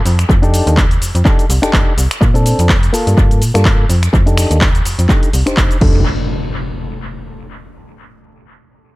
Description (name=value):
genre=filtered disco house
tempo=125 BPM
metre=4/4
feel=swing 56% on 16ths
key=F mixolydian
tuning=A4 = 440 Hz
part: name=slap-like FM bass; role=bass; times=0.1-6.0 s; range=F1 to Bb2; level=-14 LUFS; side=equal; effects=sidechain pumping, low-pass filter
part: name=punchy analog drum machine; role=drums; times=0.1-5.9 s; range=cabasa, crash cymbal, finger snaps, handclaps, hi-hat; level=-20 LUFS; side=equal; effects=sidechain pumping on perc, sidechain pumping on hats, sidechain pumping on cymbals, dub echo
part: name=direct-recorded clean electric guitar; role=riff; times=0.3-6.0 s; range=Bb3 to C5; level=-19 LUFS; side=left 1 dB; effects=sidechain pumping, low-pass filter
part: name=electronic kick drum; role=drums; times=0.3-5.9 s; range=none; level=-13 LUFS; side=equal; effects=none
part: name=overdriven clav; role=accompaniment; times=5.8-6.0 s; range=D4 to A4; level=-33 LUFS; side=right 2 dB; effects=none
part: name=impact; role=sound effects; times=5.8-7.7 s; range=none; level=-21 LUFS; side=left 1 dB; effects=none
room=digital ambience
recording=echo-heavy mix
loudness=-10 LUFS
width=side -20 dB against mid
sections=0.0-6.1 A section; 6.1-8.0 B section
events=filter sweep 0.0-6.1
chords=0.3 F13; 2.2 Bbmaj9; 2.9 Gm9; 4.1 F13; 6.1 N.C.